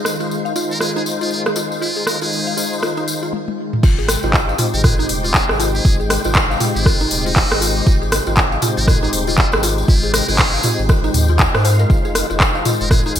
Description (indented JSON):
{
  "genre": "afro house",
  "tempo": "119 BPM",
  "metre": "4/4",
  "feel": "swing 60% on 16ths",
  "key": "unclear",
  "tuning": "A4 = 439 Hz",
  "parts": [
    { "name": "warm analog pad", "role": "sustained chords", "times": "0.0-13.2 s", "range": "C3 to G5", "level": "-27 LUFS", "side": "left 1 dB", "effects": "chorus, tremolo, sidechain pumping" },
    { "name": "mallet-like synth pluck", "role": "arpeggios", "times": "0.0-13.1 s", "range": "Eb4 to F5", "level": "-25 LUFS", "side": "equal", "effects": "chorus, sidechain pumping, digital delay" },
    { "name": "tonewheel organ", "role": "stabs", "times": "0.0-13.2 s", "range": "Ab3 to G5", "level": "-25 LUFS", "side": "left 4 dB", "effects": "overdrive, chorus vibrato, slow rotary speaker, sidechain pumping, digital delay" },
    { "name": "afro-pop drum kit", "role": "drums", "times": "0.0-13.2 s", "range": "crash cymbal, handclaps, hi-hat, rim click, toms", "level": "-19 LUFS", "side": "equal", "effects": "gated reverb" },
    { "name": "tambourine", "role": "percussion", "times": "0.1-13.2 s", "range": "none", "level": "-27 LUFS", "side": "left 3 dB", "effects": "none" },
    { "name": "trumpet with metal mute", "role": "melody", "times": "0.7-13.1 s", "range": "Eb4 to Bb4", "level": "-24 LUFS", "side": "equal", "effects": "digital delay" },
    { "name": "warm sub bass", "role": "bass", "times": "3.8-13.2 s", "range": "Eb1 to Ab2", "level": "-21 LUFS", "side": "equal", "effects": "sidechain pumping" },
    { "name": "electronic kick drum", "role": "drums", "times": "3.8-13.0 s", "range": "none", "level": "-15 LUFS", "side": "equal", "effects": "none" }
  ],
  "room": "light reverb, digital ambience",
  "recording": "bright 1980s-style digital production",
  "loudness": "-14 LUFS",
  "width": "side -10 dB against mid",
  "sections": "0.0-3.8 A section; 3.8-13.2 B section",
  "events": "drum fill 3.3-3.8; drop 3.8-13.2",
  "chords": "0.0 Fm7; 3.8 Abmaj7; 11.9 Fm7",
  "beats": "0.30 0.81 1.31 | 1.82 2.32 2.83 3.33 | 3.83 4.34 4.84 5.35 | 5.85 6.36 6.86 7.36 | 7.87 8.37 8.88 9.38 | 9.88 10.39 10.89 11.40 | 11.90 12.40 12.91"
}